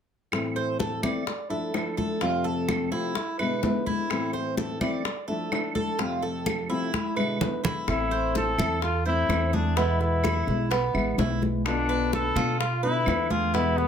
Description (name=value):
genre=latin, Cuban son and guajira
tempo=127 BPM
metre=4/4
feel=straight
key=A harmonic minor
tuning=A4 = 440 Hz
part: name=nylon-string guitar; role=accompaniment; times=0.3-13.9 s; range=F2 to F4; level=-30 LUFS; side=left 3 dB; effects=none
part: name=bongos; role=percussion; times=0.3-13.9 s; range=none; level=-34 LUFS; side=left 4 dB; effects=none
part: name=claves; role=percussion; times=0.3-13.3 s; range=none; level=-35 LUFS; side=right 3 dB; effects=none
part: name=congas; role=percussion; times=0.3-13.9 s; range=none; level=-31 LUFS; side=left 1 dB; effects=none
part: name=Cuban tres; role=arpeggios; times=0.6-13.9 s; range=B3 to D5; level=-31 LUFS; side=right 4 dB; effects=none
part: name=warm trumpet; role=melody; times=7.9-13.9 s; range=B3 to A4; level=-27 LUFS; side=left 3 dB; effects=none
part: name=upright bass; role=bass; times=7.9-13.9 s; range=A1 to B2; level=-28 LUFS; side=right 2 dB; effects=none
room=moderate studio ambience, RT60 0.5 s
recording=none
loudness=-24 LUFS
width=side -8 dB against mid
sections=0.3-7.9 A section; 7.9-13.9 B section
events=drum fill 6.9-7.9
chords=0.3 Am; 1.3 Dmadd9; 2.2 F; 3.2 E7; 4.1 Am; 5.0 Dmadd9; 6.0 F; 6.9 E7; 7.9 Am; 9.8 E; 11.7 Bdim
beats=| 0.33 0.80 1.27 1.74 | 2.21 2.69 3.16 3.63 | 4.10 4.57 5.05 5.52 | 5.99 6.46 6.93 7.41 | 7.88 8.35 8.82 9.29 | 9.77 10.24 10.71 11.18 | 11.66 12.13 12.60 13.07 | 13.54